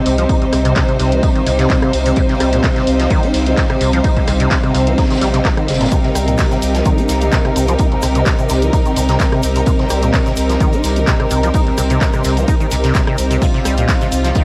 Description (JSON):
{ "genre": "acid house", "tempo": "128 BPM", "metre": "4/4", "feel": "swing 53% on 16ths", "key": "C minor", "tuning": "A4 = 441 Hz", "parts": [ { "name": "clear symphonic string section", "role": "sustained chords", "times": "0.0-14.4 s", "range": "C3 to C5", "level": "-22 LUFS", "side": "equal", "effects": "sidechain pumping" }, { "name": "granular cloud pad", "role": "texture", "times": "0.0-14.4 s", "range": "C4 to F5", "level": "-23 LUFS", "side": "equal", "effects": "built-in reverb, sidechain pumping" }, { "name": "deep acid bass", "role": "riff", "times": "0.1-14.4 s", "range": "C2 to Eb4", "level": "-22 LUFS", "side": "equal", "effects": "ensemble chorus" }, { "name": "warm sub bass", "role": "bass", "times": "0.1-14.3 s", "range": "G1 to C2", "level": "-20 LUFS", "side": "equal", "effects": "sidechain pumping" }, { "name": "loose indie drum kit", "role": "drums", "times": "0.1-14.4 s", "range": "hi-hat, snare drum, tambourine", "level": "-33 LUFS", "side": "equal", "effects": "sidechain pumping on hats, high-pass filter on hats, cassette tape, high-pass filter on snare, sidechain pumping on perc, high-pass filter on perc, high-pass filter on room" }, { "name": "punchy analog drum machine", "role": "drums", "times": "0.1-14.4 s", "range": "handclaps, hi-hat, rim click", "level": "-26 LUFS", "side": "equal", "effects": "cassette tape" }, { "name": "electronic kick drum", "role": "drums", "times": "0.3-14.4 s", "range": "none", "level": "-19 LUFS", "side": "equal", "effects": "cassette tape" }, { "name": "egg shaker", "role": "percussion", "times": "5.9-14.4 s", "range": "none", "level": "-36 LUFS", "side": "equal", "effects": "none" } ], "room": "light reverb", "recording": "home recording on cassette", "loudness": "-15 LUFS", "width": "mono", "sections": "0.0-14.4 A section", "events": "none", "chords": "0.0 Cm7" }